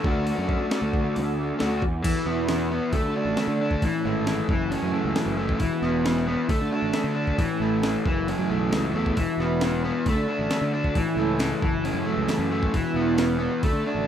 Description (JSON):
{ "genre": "indie rock", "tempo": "135 BPM", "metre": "4/4", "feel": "straight", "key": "unclear", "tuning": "A4 = 437 Hz", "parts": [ { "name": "hollow soft pad", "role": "sustained chords", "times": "0.0-14.1 s", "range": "E4 to D6", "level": "-37 LUFS", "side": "right 3 dB", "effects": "ensemble chorus, plate reverb" }, { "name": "clean electric guitar", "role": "riff", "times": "0.0-14.1 s", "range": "E2 to F#4", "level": "-30 LUFS", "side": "right 9 dB", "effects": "lush chorus" }, { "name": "overdriven electric guitar", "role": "riff", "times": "0.0-14.1 s", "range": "E3 to F#4", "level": "-25 LUFS", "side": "left 2 dB", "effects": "none" }, { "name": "fuzz picked electric bass", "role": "bass", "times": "0.0-14.0 s", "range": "E1 to D3", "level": "-29 LUFS", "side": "equal", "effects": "overdrive" }, { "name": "breakbeat sampler-style drum kit", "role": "drums", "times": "0.0-13.7 s", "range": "crash cymbal, hi-hat, kick drum, snare drum", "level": "-28 LUFS", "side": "equal", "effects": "none" }, { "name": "group handclap", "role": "percussion", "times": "9.6-13.3 s", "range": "none", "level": "-42 LUFS", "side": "right 7 dB", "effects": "none" } ], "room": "light reverb", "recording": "rough home demo mix", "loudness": "-22 LUFS", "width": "side -9 dB against mid", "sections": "0.0-2.0 A section; 2.0-14.1 B section", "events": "none", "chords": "0.0 D; 2.0 Esus2; 2.9 D; 3.8 A; 4.5 F#m7; 5.6 Esus2; 6.5 D; 7.4 A; 8.1 F#m7; 9.2 Esus2; 10.1 D; 11.0 A; 11.6 F#m7; 12.7 Esus2" }